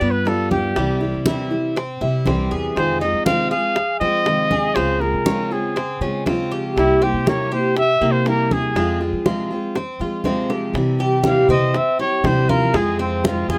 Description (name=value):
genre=latin, Cuban son and guajira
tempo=120 BPM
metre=4/4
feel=straight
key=F minor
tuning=A4 = 435 Hz
part: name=breathy trumpet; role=melody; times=0.0-13.6 s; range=C4 to F5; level=-23 LUFS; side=equal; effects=none
part: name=picked steel-string acoustic guitar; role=accompaniment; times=0.0-13.6 s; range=C3 to G4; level=-26 LUFS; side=equal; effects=none
part: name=Cuban tres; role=arpeggios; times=0.0-13.6 s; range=G3 to Ab4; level=-26 LUFS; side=equal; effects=none
part: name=upright bass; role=bass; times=0.0-13.6 s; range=C2 to F3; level=-27 LUFS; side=equal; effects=none
part: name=congas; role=percussion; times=0.0-13.6 s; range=none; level=-28 LUFS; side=equal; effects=none
part: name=bongos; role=percussion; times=0.3-13.5 s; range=none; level=-26 LUFS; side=equal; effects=none
room=light reverb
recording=none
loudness=-19 LUFS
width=mono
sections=0.0-10.8 A section; 10.8-13.6 B section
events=drum fill 9.8-10.8; trumpet solo 10.8-13.6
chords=0.0 G7; 0.8 C; 2.8 Fm7; 4.8 Dbmaj7; 6.8 C7; 8.8 Fm; 10.8 C; 12.7 Fm